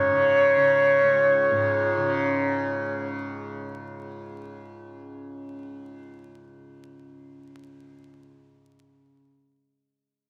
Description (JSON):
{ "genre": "indian classical", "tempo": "112 BPM", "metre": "5/4", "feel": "straight", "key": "unclear", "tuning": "A4 = 440 Hz", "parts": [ { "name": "bright reedy bansuri", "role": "melody", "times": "0.0-3.1 s", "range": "C#5", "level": "-22 LUFS", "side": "equal", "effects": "none" }, { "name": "tanpura", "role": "drone", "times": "0.0-9.1 s", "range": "C#2 to C#3", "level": "-33 LUFS", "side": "equal", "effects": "none" } ], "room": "moderate studio reverb, RT60 0.6 s", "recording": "vinyl crackle", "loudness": "-22 LUFS", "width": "mono", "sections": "0.0-2.3 A section", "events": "none", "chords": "none" }